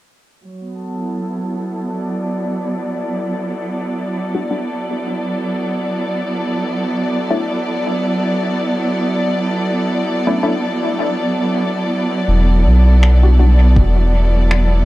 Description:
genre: ambient dub.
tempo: 81 BPM.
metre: 4/4.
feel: swing 57% on 16ths.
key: unclear.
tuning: A4 = 443 Hz.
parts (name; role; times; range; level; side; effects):
warm studio string section; sustained chords; 0.4-14.8 s; F#3 to D5; -18 LUFS; right 1 dB; low-pass filter.
filtered dub chord stab; stabs; 1.4-13.7 s; G3 to F#4; -23 LUFS; left 2 dB; chorus, dub echo.
round analog bass; bass; 12.3-14.8 s; E1 to B1; -10 LUFS; equal; none.
finger snaps; drums; 13.0-14.7 s; none; -22 LUFS; equal; dub echo.
electronic kick drum; drums; 13.8-13.9 s; none; -15 LUFS; equal; overdrive.
room: light reverb, small room ambience.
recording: dark, warm production.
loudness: -15 LUFS.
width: side -17 dB against mid.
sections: 0.4-12.3 A section; 12.3-14.8 B section.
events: filter sweep on string section 0.4-12.3; filter sweep on synth stab 0.4-12.3.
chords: 0.4 Em9; 6.4 Bm11; 12.3 Em9.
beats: | 0.43 1.17 1.91 2.65 | 3.40 4.14 4.88 5.62 | 6.36 7.10 7.84 8.58 | 9.32 10.06 10.80 11.54 | 12.28 13.03 13.77 14.51.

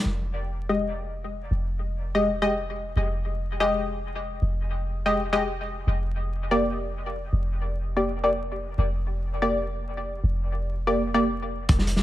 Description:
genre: drum and bass, jungle.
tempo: 165 BPM.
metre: 4/4.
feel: straight.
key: F dorian.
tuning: A4 = 440 Hz.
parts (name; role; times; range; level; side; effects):
warm 808-style bass; bass; 0.1-12.0 s; F1; -28 LUFS; equal; none.
filtered dub chord stab; stabs; 0.7-11.2 s; Ab3 to Eb5; -26 LUFS; left 1 dB; chorus, dub echo.
crunchy breakbeat drum kit; drums; 11.7-12.0 s; hi-hat, kick drum, snare drum; -23 LUFS; equal; none.
room: light reverb.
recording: vinyl crackle.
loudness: -24 LUFS.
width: side -14 dB against mid.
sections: 0.1-11.7 A section.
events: none.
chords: 0.1 Fm9; 5.9 Gm/F.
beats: | 0.05 0.42 0.78 1.15 | 1.51 1.87 2.24 2.60 | 2.96 3.33 3.69 4.05 | 4.42 4.78 5.14 5.51 | 5.87 6.24 6.60 6.96 | 7.33 7.69 8.05 8.42 | 8.78 9.14 9.51 9.87 | 10.24 10.60 10.96 11.33 | 11.69.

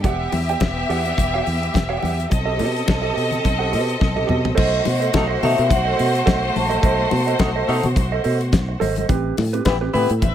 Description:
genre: disco.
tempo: 106 BPM.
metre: 4/4.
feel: swing 56% on 16ths.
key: unclear.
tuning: A4 = 445 Hz.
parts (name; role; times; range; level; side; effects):
clear studio string section; second line; 0.0-10.3 s; A3 to E5; -24 LUFS; left 1 dB; none.
mellow electric guitar; accompaniment; 0.0-10.3 s; C4 to G5; -25 LUFS; right 7 dB; none.
fingered electric bass; bass; 0.0-10.3 s; E1 to B2; -23 LUFS; equal; none.
damped 70s drum kit; drums; 0.0-10.3 s; crash cymbal, hi-hat, kick drum, snare drum, toms; -22 LUFS; equal; none.
congas; percussion; 0.0-10.3 s; none; -28 LUFS; left 7 dB; none.
vibraphone with hard mallets; melody; 4.6-7.6 s; D#5 to A5; -23 LUFS; equal; none.
mellow horn section; stabs; 5.1-10.1 s; A3 to B4; -22 LUFS; left 3 dB; none.
room: light reverb.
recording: none.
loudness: -17 LUFS.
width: side -10 dB against mid.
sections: 0.0-4.6 A section; 4.6-10.3 B section.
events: drum fill 4.0-4.6.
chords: 0.0 Em9; 2.3 B7b9b13; 4.6 B7b9; 9.1 Am9.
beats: | 0.04 0.61 1.18 1.75 | 2.31 2.88 3.45 4.01 | 4.58 5.14 5.71 6.27 | 6.84 7.40 7.97 8.53 | 9.10 9.66 10.22.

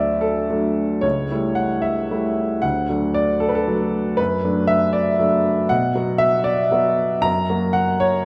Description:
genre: classical, romantic character piece for solo piano.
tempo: 78 BPM (dotted quarters).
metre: 6/8.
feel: rubato.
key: D major.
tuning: A4 = 439 Hz.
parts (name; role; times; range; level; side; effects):
clear upright piano; solo; 0.0-8.2 s; C#2 to A#5; -20 LUFS; equal; none.
room: wet recital hall reverb, RT60 1.7 s.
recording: none.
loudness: -20 LUFS.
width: mono.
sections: 0.0-8.2 A section.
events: none.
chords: 0.0 D; 1.0 A7/C#; 2.6 D; 4.2 D/F#; 5.7 Bm; 7.2 F#.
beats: 0.23 | 1.04 1.83 | 2.63 3.42 | 4.18 4.95 | 5.71 6.46 | 7.23 8.02.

